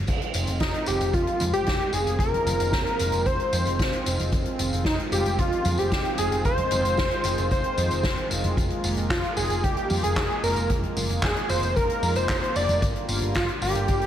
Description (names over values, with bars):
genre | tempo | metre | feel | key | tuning
synthwave | 113 BPM | 4/4 | straight | F dorian | A4 = 440 Hz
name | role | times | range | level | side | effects
hollow-body short-scale picked electric bass | bass | 0.0-14.0 s | F1 to F2 | -28 LUFS | equal | none
warm analog pad | sustained chords | 0.1-14.1 s | D3 to F4 | -31 LUFS | equal | chorus, sidechain pumping
kick drum | drums | 0.1-14.0 s | none | -30 LUFS | equal | none
soft-mallet drum kit | drums | 0.1-14.1 s | crash cymbal, handclaps, hi-hat, snare drum, tambourine, toms | -30 LUFS | equal | gated reverb
wide unison lead | melody | 0.6-14.1 s | Eb4 to D5 | -27 LUFS | equal | vintage 12-bit sampler grit, digital delay
soft synth bell | second line | 0.6-14.1 s | Eb4 to D5 | -33 LUFS | equal | none
room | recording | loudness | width
light reverb | none | -22 LUFS | side -10 dB against mid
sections
0.1-14.1 A section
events
none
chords
0.1 Fm7; 8.6 Bb7sus4/F; 12.8 Gm7